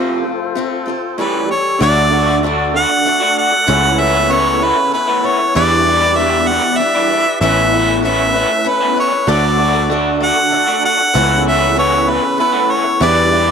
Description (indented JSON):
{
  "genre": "rock",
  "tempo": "96 BPM",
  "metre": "3/4",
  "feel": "straight",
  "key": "D major",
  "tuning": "A4 = 440 Hz",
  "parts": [
    { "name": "picked swing-style acoustic guitar", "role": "accompaniment", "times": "0.0-13.5 s", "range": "A2 to B4", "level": "-20 LUFS", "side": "left 10 dB", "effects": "none" },
    { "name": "tonewheel organ", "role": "sustained chords", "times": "0.0-13.5 s", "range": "C#4 to D5", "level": "-25 LUFS", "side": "right 1 dB", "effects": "slow rotary speaker" },
    { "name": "electric guitar through a small old amp", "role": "riff", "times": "0.0-13.5 s", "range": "E2 to F#4", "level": "-18 LUFS", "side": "right 2 dB", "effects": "harmonic tremolo" },
    { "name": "clear harmonica", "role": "melody", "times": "1.2-13.5 s", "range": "B4 to F#5", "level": "-14 LUFS", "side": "right 1 dB", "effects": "tape echo" },
    { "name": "picked electric bass", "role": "bass", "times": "1.8-13.5 s", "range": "A1 to E2", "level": "-19 LUFS", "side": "right 1 dB", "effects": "none" },
    { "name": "bright baby grand piano", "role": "accompaniment", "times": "9.3-13.5 s", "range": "D4 to E5", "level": "-26 LUFS", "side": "right 12 dB", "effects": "none" }
  ],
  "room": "moderate plate reverb, RT60 3.2 s",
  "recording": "1960s-style stereo with parts hard left and right",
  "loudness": "-12 LUFS",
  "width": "side -6 dB against mid",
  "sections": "0.0-1.8 A section; 1.8-13.5 B section",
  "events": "break 0.0-1.8",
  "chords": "0.0 F; 1.2 A7; 1.8 D; 3.7 Aadd9/C#; 5.5 Em7; 7.4 Aadd9; 9.3 D; 11.1 Aadd9/C#; 13.0 Em7",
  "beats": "0.57 1.19 | 1.81 2.44 3.06 | 3.68 4.31 4.93 | 5.55 6.17 6.79 | 7.42 8.04 8.66 | 9.28 9.90 10.52 | 11.15 11.77 12.39 | 13.01"
}